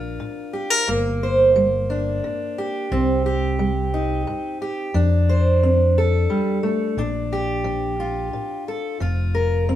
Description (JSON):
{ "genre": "folk", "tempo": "89 BPM", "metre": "3/4", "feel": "straight", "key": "Bb major", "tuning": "A4 = 441 Hz", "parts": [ { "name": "fingerpicked steel-string acoustic guitar", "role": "accompaniment", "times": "0.0-9.8 s", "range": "G2 to C5", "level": "-21 LUFS", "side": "right 1 dB", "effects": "none" }, { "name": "fingered electric bass", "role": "bass", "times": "0.0-9.8 s", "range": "F1 to F2", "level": "-22 LUFS", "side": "equal", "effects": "none" } ], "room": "moderate studio reverb, RT60 0.9 s", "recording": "band playing live in one room", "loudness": "-19 LUFS", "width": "side -12 dB against mid", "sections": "0.0-9.8 A section", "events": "none", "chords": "0.0 Bb; 0.9 Gm; 2.9 Cm; 4.9 F6; 7.0 Bbmaj7; 9.0 N.C." }